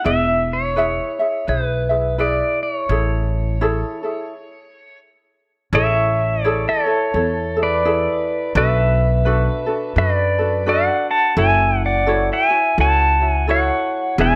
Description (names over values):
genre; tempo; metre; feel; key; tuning
Hawaiian; 85 BPM; 4/4; swing 60% on 8ths; A major; A4 = 441 Hz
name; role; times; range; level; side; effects
pedal steel guitar; melody; 0.0-14.4 s; A4 to A5; -21 LUFS; equal; slapback echo
ukulele; accompaniment; 0.0-14.4 s; D4 to E5; -25 LUFS; equal; none
upright bass; bass; 0.1-14.4 s; E1 to F#2; -23 LUFS; equal; none
room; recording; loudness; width
light reverb, studio reverb; none; -18 LUFS; mono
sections
0.0-5.7 A section; 5.7-14.4 A section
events
stop 4.3-5.7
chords
0.1 E; 2.9 Amaj7; 8.6 Bm7; 11.4 F#m7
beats
| 0.05 0.76 1.47 2.19 | 2.90 3.61 4.32 5.03 | 5.73 6.44 7.15 7.85 | 8.56 9.26 9.97 10.67 | 11.38 12.08 12.78 13.49 | 14.19